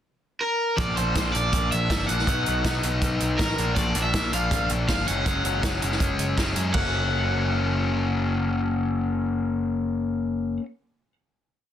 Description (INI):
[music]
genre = indie rock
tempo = 161 BPM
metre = 4/4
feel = straight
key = unclear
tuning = A4 = 440 Hz
[part]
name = overdriven semi-hollow guitar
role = melody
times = 0.4-10.6 s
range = A#4 to F#5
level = -28 LUFS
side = equal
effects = digital delay
[part]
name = biting overdriven guitar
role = riff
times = 0.8-10.7 s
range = E#3 to F#4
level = -26 LUFS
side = left 3 dB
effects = none
[part]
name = growling picked electric bass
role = bass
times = 0.8-10.6 s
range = F#1 to F#2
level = -28 LUFS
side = right 1 dB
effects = overdrive
[part]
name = vintage drum kit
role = drums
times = 0.8-6.8 s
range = crash cymbal, hi-hat, kick drum, snare drum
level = -28 LUFS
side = right 1 dB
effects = none
[sound]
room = light reverb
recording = dense, heavily limited modern master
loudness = -22 LUFS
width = side -10 dB against mid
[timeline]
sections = 0.0-0.8 pickup bar; 0.8-6.7 interlude; 6.7-9.7 final chord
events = none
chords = 0.0 N.C.; 0.8 A#; 2.3 B; 3.6 A#; 5.1 F#sus2; 6.7 F#